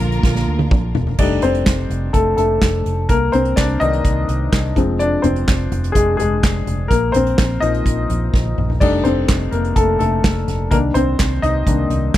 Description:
piano-driven pop; 126 BPM; 4/4; straight; A4 = 441 Hz
warm baby grand piano; accompaniment; 0.0-12.2 s; D3 to Bb5; -18 LUFS; left 3 dB
dark studio string section; sustained chords; 0.0-1.2 s; D3 to Bb4; -25 LUFS; right 4 dB
vintage muted fingered electric bass; bass; 0.0-12.2 s; E1 to D2; -20 LUFS; right 1 dB
unplugged drum kit; drums; 0.0-12.2 s; crash cymbal, handclaps, hi-hat, kick drum, snare drum, toms; -19 LUFS; right 1 dB
studio ambience; dry, close 1970s-style studio recording; -14 LUFS; side -13 dB against mid
0.0-1.2 A section; 1.2-12.2 B section
drum fill 0.2-1.2, 8.3-8.8; grand piano solo 1.2-12.2
0.0 Bb; 1.2 F7; 3.1 Cm7; 4.8 Fm; 6.9 Bbsus4; 8.8 F7; 10.7 Cm7
0.24 0.72 | 1.19 1.67 2.14 2.62 | 3.10 3.57 4.05 4.53 | 5.00 5.48 5.95 6.43 | 6.91 7.38 7.86 8.34 | 8.81 9.29 9.76 10.24 | 10.71 11.19 11.67 12.14

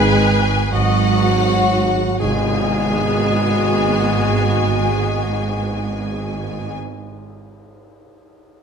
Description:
cinematic, emotional film score for orchestra; 42 BPM; 4/4; rubato; G# minor; A4 = 437 Hz
rich studio violin section; melody; 0.0-6.8 s; F#5 to G#5; -25 LUFS; left 5 dB
mellow hollow baroque flute; second line; 0.0-6.8 s; D#5 to G#5; -28 LUFS; left 2 dB
rich studio violin section; second line; 0.0-6.7 s; F#4 to G#4; -27 LUFS; left 2 dB
warm clarinet; second line; 0.0-6.7 s; F#4 to G#4; -27 LUFS; equal
rich studio viola section; accompaniment; 0.0-6.7 s; B3 to D#5; -24 LUFS; right 2 dB
mellow French horn section; sustained chords; 0.0-6.7 s; F#3 to G#3; -23 LUFS; left 3 dB
rich studio cello section; bass; 0.0-6.7 s; G#2; -23 LUFS; right 5 dB
rich studio double bass section; bass; 0.0-6.7 s; G#1; -22 LUFS; right 4 dB
tam-tam; percussion; 2.2-6.7 s; -30 LUFS; left 2 dB
wet scoring stage reverb, RT60 1.7 s; dark, warm production; -15 LUFS; side -6 dB against mid
0.0-2.2 A section; 2.2-8.0 B section
slowing down 0.0-2.2; band accent 2.2-3.6
0.0 G#m7
0.72 | 2.20 3.64 5.07 6.52

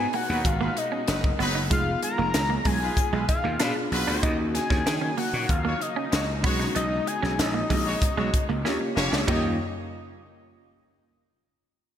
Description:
polished 1980s jazz-funk pop; 95 BPM; 4/4; straight; Eb minor; A4 = 441 Hz
fat analog lead; melody; 0.0-9.6 s; Eb5 to Bb5; -30 LUFS; left 2 dB
mellow tine electric piano; accompaniment; 0.0-9.6 s; G#3 to Bb5; -33 LUFS; left 1 dB; ensemble chorus
warm studio string section; sustained chords; 0.0-9.6 s; Bb2 to Gb4; -38 LUFS; left 2 dB
semi-hollow electric guitar; riff; 0.0-9.5 s; Ab3 to Eb4; -33 LUFS; right 8 dB; analog chorus
gritty slap bass; bass; 0.0-9.6 s; F1 to Eb3; -28 LUFS; equal; overdrive
crisp fusion drum kit; drums; 0.1-9.4 s; crash cymbal, hi-hat, kick drum, snare drum, toms; -27 LUFS; equal; gated reverb
warm horn section; second line; 0.3-9.5 s; Gb3 to Db5; -33 LUFS; left 1 dB
moderate lush hall reverb, RT60 2.0 s; bright 1980s-style digital production; -22 LUFS; side -9 dB against mid
0.0-9.3 A section; 9.3-11.8 B section
drum fill 8.6-9.3
0.0 Abm9; 1.7 Fm7b5; 3.6 Bb7b9; 4.2 Ebm9; 6.4 B69; 8.6 Eb7
0.45 1.08 | 1.71 2.34 2.97 3.60 | 4.23 4.86 5.49 6.12 | 6.75 7.38 8.02 8.65 | 9.28

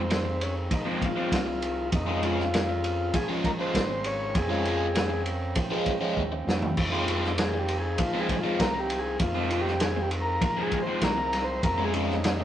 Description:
psychedelic rock; 99 BPM; 4/4; straight; F minor; A4 = 438 Hz
overdriven combo organ; melody; 0.0-12.4 s; C4 to Db5; -30 LUFS; left 1 dB
pedal harmonium; sustained chords; 0.0-12.4 s; F3 to G5; -38 LUFS; right 3 dB
fuzz fingered electric bass; bass; 0.0-12.4 s; Ab1 to F3; -32 LUFS; equal; overdrive
overdriven semi-hollow guitar; riff; 0.1-12.4 s; F3 to F4; -30 LUFS; equal; phaser
vintage drum kit; drums; 0.1-12.4 s; crash cymbal, kick drum, ride cymbal, snare drum, toms; -29 LUFS; equal
moderate stone room reverb, RT60 1.0 s; rough rehearsal-room recording, nothing above 10.3 kHz; -24 LUFS; side -11 dB against mid
0.0-12.4 A section
transistor combo organ solo 0.0-12.4; drum fill 6.2-6.8
0.0 Fm7; 1.9 Db; 6.8 Fm7; 11.6 Db
0.11 0.71 1.32 | 1.93 2.53 3.14 3.74 | 4.35 4.96 5.56 6.17 | 6.78 7.38 7.99 8.60 | 9.20 9.81 10.42 11.02 | 11.63 12.24

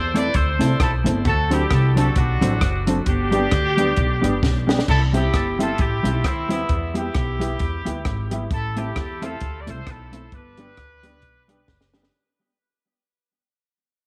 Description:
ska; 132 BPM; 4/4; swing 57% on 8ths; C major; A4 = 440 Hz
clear horn section; melody; 0.0-11.9 s; B3 to D5; -27 LUFS; equal; tape echo
upright bass; bass; 0.0-12.1 s; F#1 to E2; -25 LUFS; equal
mellow electric guitar; accompaniment; 0.1-12.1 s; F#3 to A4; -28 LUFS; equal; tape echo
dark upright piano; stabs; 0.1-12.1 s; C4 to E5; -32 LUFS; equal
compact cocktail drum kit; drums; 0.2-12.1 s; crash cymbal, hi-hat, kick drum, rim click, snare drum; -27 LUFS; equal
moderate spring reverb, RT60 2.0 s, small room ambience; -21 LUFS; mono
0.0-4.9 A section; 4.9-12.1 B section
drum fill 4.4-4.9, 11.7-12.1; fade-out 4.9-12.1
0.0 Am; 1.3 D7; 3.1 G; 4.9 C; 6.7 Em; 8.5 Am; 10.3 G
0.34 0.80 | 1.25 1.71 2.16 2.61 | 3.07 3.52 3.97 4.43 | 4.88 5.33 5.79 6.24 | 6.70 7.15 7.60 8.06 | 8.51 8.96 9.42 9.87 | 10.33 10.78 11.23 11.69

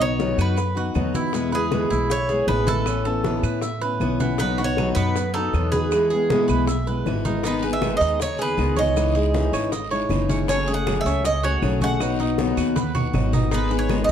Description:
latin, Cuban son and guajira; 158 BPM; 4/4; straight; E major; A4 = 441 Hz
Cuban tres; melody; 0.0-14.1 s; G#4 to F#5; -24 LUFS; right 2 dB
picked steel-string acoustic guitar; accompaniment; 0.0-14.1 s; B2 to G#4; -25 LUFS; left 4 dB
Cuban tres; arpeggios; 0.0-14.1 s; B3 to E5; -28 LUFS; right 4 dB
upright bass; bass; 0.0-14.1 s; F#1 to A2; -25 LUFS; equal
congas; percussion; 0.0-14.1 s; -30 LUFS; equal
maracas; percussion; 0.0-14.1 s; -41 LUFS; right 8 dB
bongos; percussion; 0.2-14.1 s; -34 LUFS; left 8 dB
claves; percussion; 0.4-14.1 s; -40 LUFS; right 8 dB
guiro; percussion; 7.5-14.1 s; -42 LUFS; left 6 dB
moderate large studio reverb, RT60 1.1 s; dark, warm production; -19 LUFS; side -9 dB against mid
0.0-14.1 A section
drum fill 12.8-13.5
0.0 B; 1.3 E; 2.9 Aadd9; 4.4 B; 5.9 E; 7.4 G#m; 9.0 C#madd9; 10.5 F#madd9; 12.0 B; 13.5 G#m
0.20 0.58 0.96 | 1.34 1.72 2.10 2.48 | 2.86 3.25 3.63 4.01 | 4.39 4.77 5.15 5.53 | 5.92 6.30 6.68 7.06 | 7.44 7.82 8.20 8.58 | 8.96 9.35 9.73 10.11 | 10.49 10.87 11.24 11.62 | 12.00 12.38 12.76 13.14 | 13.52 13.90

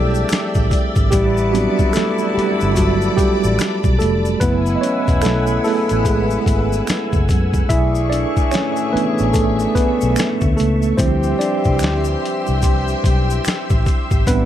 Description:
R&B, neo-soul; 73 BPM; 4/4; swing 62% on 16ths; A4 = 440 Hz
mellow tine electric piano; accompaniment; 0.0-14.5 s; E3 to E5; -19 LUFS; right 2 dB; medium stereo tremolo
string machine, full ensemble; sustained chords; 0.0-14.5 s; A3 to E6; -24 LUFS; left 1 dB; ensemble chorus
mellow horn section; stabs; 0.0-14.5 s; A2 to G#4; -25 LUFS; left 6 dB
vintage muted fingered electric bass; bass; 0.0-14.5 s; E1 to F#2; -20 LUFS; equal
tube shaker and finger snaps; percussion; 0.1-14.5 s; -32 LUFS; equal
boom bap sampler-style drum kit; drums; 0.3-14.5 s; hi-hat, kick drum, snare drum; -18 LUFS; equal
small room ambience; dark, warm production; -14 LUFS; side -11 dB against mid
0.0-14.5 A section
tine electric piano solo 0.0-14.5
0.0 Dm11; 1.1 Am11; 4.4 F#m11; 7.7 Bm11; 11.0 Dm11
0.30 | 1.12 1.95 2.77 3.59 | 4.41 5.23 6.05 6.88 | 7.70 8.52 9.34 10.16 | 10.99 11.81 12.63 13.45 | 14.27

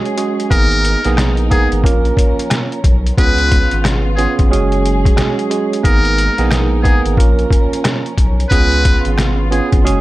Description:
hip hop, boom-bap hip-hop; 90 BPM; 4/4; swing 62% on 16ths; A4 = 442 Hz
tine electric piano; accompaniment; 0.0-10.0 s; G#3 to A#4; -18 LUFS; right 5 dB; cassette tape, high-pass filter, low-pass filter, plate reverb
warm studio string section; sustained chords; 0.0-10.0 s; C#3 to A#4; -25 LUFS; left 1 dB; high-pass filter, low-pass filter, plate reverb
trip hop sampler-style drum kit; drums; 0.1-10.0 s; hi-hat, kick drum, rim click, snare drum; -14 LUFS; equal
trumpet with metal mute; melody; 0.5-9.7 s; G#4 to B4; -17 LUFS; left 1 dB; high-pass filter, low-pass filter, slapback echo, plate reverb
saturated sub bass; bass; 0.5-10.0 s; F#1 to C#2; -16 LUFS; equal
light reverb; -11 LUFS; side -17 dB against mid
0.0-10.0 A section
0.0 F#sus2; 0.5 G#madd9; 1.8 A#m; 3.2 C#7; 4.5 F#sus2; 5.8 G#madd9; 7.2 A#m; 8.5 C#7
| 0.51 1.18 1.84 2.51 | 3.18 3.84 4.51 5.18 | 5.84 6.51 7.18 7.84 | 8.51 9.18 9.84

